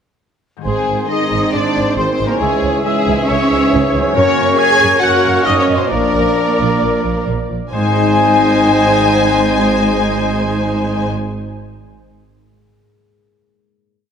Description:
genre	cinematic, heroic adventure film score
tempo	137 BPM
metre	4/4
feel	straight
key	unclear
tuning	A4 = 440 Hz
part	warm cor anglais	second line	0.6-11.1 s	C5 to Fb5	-24 LUFS	right 2 dB	none
part	clear trombone section	sustained chords	0.6-11.1 s	Gb2 to Ab3	-23 LUFS	right 4 dB	none
part	concert harp	arpeggios	0.6-11.6 s	Gb2 to Ab5	-23 LUFS	left 6 dB	none
part	warm studio cello section	bass	0.6-11.1 s	Ab3 to Ab4	-20 LUFS	right 2 dB	none
part	warm symphonic violin section	melody	0.7-11.1 s	Ab4 to Ab5	-21 LUFS	left 5 dB	none
part	clear clarinet	second line	0.7-11.1 s	Ab4 to C5	-23 LUFS	left 2 dB	none
part	silver concert flute	second line	0.7-11.1 s	Ab5 to Ab6	-21 LUFS	left 2 dB	none
part	warm symphonic violin section	second line	0.7-11.1 s	Ab4 to Ab5	-24 LUFS	left 3 dB	none
part	dark symphonic viola section	accompaniment	0.7-11.1 s	Eb4 to Fb5	-22 LUFS	right 1 dB	none
part	warm French horn section	sustained chords	0.7-11.1 s	Ab3 to Eb4	-22 LUFS	left 3 dB	none
part	rich symphonic double bass section	bass	0.7-11.1 s	Ab1 to Gb2	-21 LUFS	right 4 dB	none
room	wet concert hall reverb, RT60 2.0 s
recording	none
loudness	-12 LUFS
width	side -7 dB against mid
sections	0.7-7.7 theme; 7.7-11.2 final chord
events	none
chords	0.7 Ab; 2.4 Dbm; 4.2 Gb; 5.9 Bb; 7.7 Ab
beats	| 0.66 1.10 1.54 1.97 | 2.41 2.85 3.29 3.73 | 4.16 4.59 5.02 5.46 | 5.91 6.37 6.82 7.28 | 7.72 8.16 8.60 9.04 | 9.48 9.91 10.35 10.79

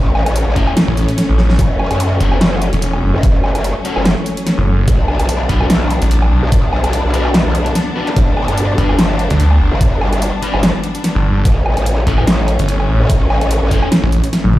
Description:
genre	heavy wobble dubstep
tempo	146 BPM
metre	4/4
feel	swing 55% on 16ths, half-time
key	unclear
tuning	A4 = 441 Hz
part	clear symphonic string section	sustained chords	0.0-14.6 s	E3 to D4	-21 LUFS	left 1 dB	sidechain pumping
part	growl bass	bass	0.0-13.8 s	F#1 to G2	-16 LUFS	equal	chorus, overdrive
part	dubstep drum kit	drums	0.2-14.6 s	hi-hat, snare drum, toms, woodblock	-18 LUFS	equal	overdrive
part	fuzz guitar	stabs	0.6-13.9 s	C#4 to B4	-25 LUFS	left 2 dB	none
part	electronic kick drum	drums	0.6-13.8 s	none	-14 LUFS	equal	overdrive
part	snarling distorted saw bass	bass	0.9-14.6 s	E1 to D2	-13 LUFS	equal	distortion, overdrive
part	zap	sound effects	8.1-8.2 s	none	-26 LUFS	left 1 dB	none
room	light reverb, digital ambience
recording	played on a big sound system in a bare room, large studio reverb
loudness	-12 LUFS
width	side -15 dB against mid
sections	0.0-14.6 A section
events	drum fill 1.4, 14.4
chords	0.0 A; 1.6 F#m; 4.9 Bm; 8.2 G; 11.5 A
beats	0.36 0.77 1.18 | 1.59 2.00 2.41 2.82 | 3.23 3.64 4.05 4.47 | 4.88 5.29 5.70 6.11 | 6.52 6.93 7.34 7.75 | 8.16 8.58 8.99 9.40 | 9.81 10.22 10.63 11.04 | 11.45 11.86 12.27 12.69 | 13.10 13.51 13.92 14.33

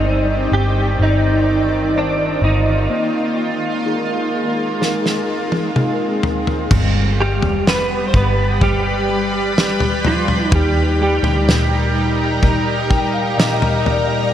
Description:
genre	pop ballad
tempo	63 BPM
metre	4/4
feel	straight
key	unclear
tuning	A4 = 444 Hz
part	direct-recorded clean electric guitar	melody	0.0-13.8 s	F3 to C5	-21 LUFS	right 2 dB	ensemble chorus
part	mellow tine electric piano	accompaniment	0.0-14.3 s	Bb2 to G5	-22 LUFS	left 2 dB	ensemble chorus
part	shimmering ambient pad	sustained chords	0.0-14.3 s	Eb3 to B5	-22 LUFS	right 1 dB	chorus, built-in reverb
part	vintage muted fingered electric bass	bass	0.0-14.3 s	F1 to Eb2	-19 LUFS	equal	none
part	loose indie drum kit	drums	4.8-14.1 s	crash cymbal, kick drum, snare drum, toms	-19 LUFS	equal	none
room	moderate huge ambient reverb, RT60 8.2 s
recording	dreamy mix soaked in reverb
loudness	-15 LUFS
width	side -10 dB against mid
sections	0.0-6.7 A section; 6.7-14.3 B section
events	break 2.9-6.7; drum fill 4.8-6.7; tine electric piano fill 12.4-14.3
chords	0.0 Cmadd9/G; 2.9 Bb7sus4; 6.7 G; 10.5 Eb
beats	0.04 1.00 1.95 | 2.90 3.85 4.81 5.76 | 6.71 7.67 8.62 9.57 | 10.52 11.47 12.43 13.38 | 14.33

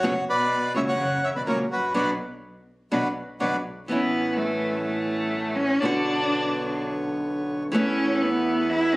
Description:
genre	tango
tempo	125 BPM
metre	4/4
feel	rubato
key	B minor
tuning	A4 = 440 Hz
part	bandoneon	melody	0.0-3.6 s	F#4 to F#5	-24 LUFS	equal	none
part	rich cello	second line	0.0-9.0 s	F#2 to E4	-26 LUFS	left 1 dB	none
part	nylon-string guitar	accompaniment	0.0-9.0 s	B2 to F#4	-26 LUFS	right 1 dB	none
part	clear double bass	bass	0.0-9.0 s	F#1 to E2	-38 LUFS	equal	none
part	bandoneon	stabs	3.9-9.0 s	A3 to C#5	-33 LUFS	equal	none
room	moderate large studio reverb, RT60 1.1 s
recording	recorded on a phone in the room, club reverb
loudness	-22 LUFS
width	side -21 dB against mid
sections	0.0-3.9 A section; 3.9-9.0 B section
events	band accent 2.0-3.9; cello solo 3.9-9.0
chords	0.0 F#sus4; 1.0 F#; 2.0 Bm; 3.9 Aadd9; 5.8 Bmadd9; 7.7 Esus4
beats	| 0.04 0.52 0.99 1.47 | 1.95 2.44 2.92 3.41 | 3.90 4.38 4.87 5.35 | 5.83 6.31 6.79 7.26 | 7.74 8.21 8.69

